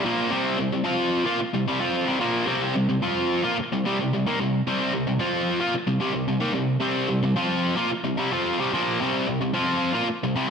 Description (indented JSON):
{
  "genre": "rock",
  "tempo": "111 BPM",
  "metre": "4/4",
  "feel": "straight",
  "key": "unclear",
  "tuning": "A4 = 440 Hz",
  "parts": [
    { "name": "sludgy distorted guitar", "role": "solo", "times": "0.0-10.5 s", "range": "Bb2 to F4", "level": "-22 LUFS", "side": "equal", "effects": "overdrive, slapback echo" }
  ],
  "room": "wet scoring stage reverb, RT60 1.7 s, digital ambience",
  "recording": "big arena sound",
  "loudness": "-22 LUFS",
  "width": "side -6 dB against mid",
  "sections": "0.0-10.5 A section",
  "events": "none",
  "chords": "0.0 C5"
}